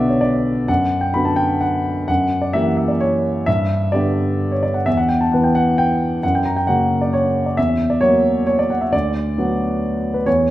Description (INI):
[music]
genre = classical, piano waltz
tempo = 132 BPM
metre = 3/4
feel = uneven beats, rubato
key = B minor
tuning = A4 = 440 Hz
[part]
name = warm grand piano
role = solo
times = 0.0-10.5 s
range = B1 to B5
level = -16 LUFS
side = equal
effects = none
[sound]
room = wet recital hall reverb, RT60 1.4 s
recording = none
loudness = -16 LUFS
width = side -15 dB against mid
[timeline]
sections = 0.0-10.5 A section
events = none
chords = 0.0 Bm; 2.1 F#7b9; 3.5 G; 4.9 Em; 6.2 F#; 7.6 F#7/E; 8.9 Bm/D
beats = 0.21 | 0.68 1.13 1.62 | 2.08 2.54 3.02 | 3.47 3.93 4.40 | 4.86 5.32 5.79 | 6.23 6.67 7.13 | 7.57 8.02 8.48 | 8.93 9.37 9.81 | 10.26